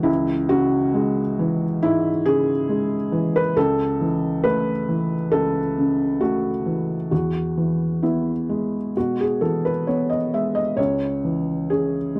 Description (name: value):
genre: neoclassical minimalist piano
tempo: 67 BPM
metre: 4/4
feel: rubato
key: C# minor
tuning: A4 = 440 Hz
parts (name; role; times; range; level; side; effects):
- felt-muted upright piano; solo; 0.0-12.2 s; C#2 to E5; -22 LUFS; equal; none
room: little or no reverb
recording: dry, close 1970s-style studio recording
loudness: -22 LUFS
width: mono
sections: 0.0-12.2 A section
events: none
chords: 0.0 C#m; 3.6 A/C#; 7.1 E; 10.8 C#m